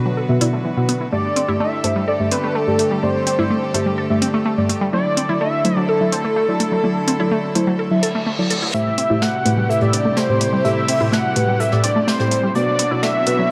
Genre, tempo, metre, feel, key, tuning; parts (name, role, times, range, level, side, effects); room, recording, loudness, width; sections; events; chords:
progressive house; 126 BPM; 4/4; straight; A dorian; A4 = 440 Hz
clear studio string section; sustained chords; 0.0-13.5 s; B2 to B4; -27 LUFS; equal
deep mellow chord stab; stabs; 0.0-13.5 s; G2 to F#5; -23 LUFS; equal; chorus, vintage 12-bit sampler grit, dub echo
glassy wavetable pluck; arpeggios; 0.1-13.4 s; E3 to A4; -26 LUFS; equal; chorus, dub echo
electronic hi-hat; drums; 0.4-13.4 s; -26 LUFS; equal; high-pass filter on hats
unison lead; melody; 1.1-13.5 s; A4 to F#5; -23 LUFS; equal; dub echo
reverse cymbal and riser; sound effects; 8.0-13.5 s; -32 LUFS; equal
jazz brush drum kit; drums; 8.7-13.4 s; hi-hat, snare drum; -31 LUFS; equal; high-pass filter on hats, high-pass filter on snare, high-pass filter on room
saturated sub bass; bass; 8.9-13.5 s; barely audible
moderate lush hall reverb, RT60 1.7 s; dark, warm production, high-pass filter; -18 LUFS; mono
0.0-8.7 A section; 8.7-13.5 B section
filter sweep on synth stab 0.0-8.7; reverse cymbal 8.0-8.7; build-up 8.7-13.5; filter sweep on synth arpeggio sound 8.7-13.5
0.0 Bm; 1.1 Gsus2; 4.9 Dadd9; 8.7 Am7; 12.6 Bm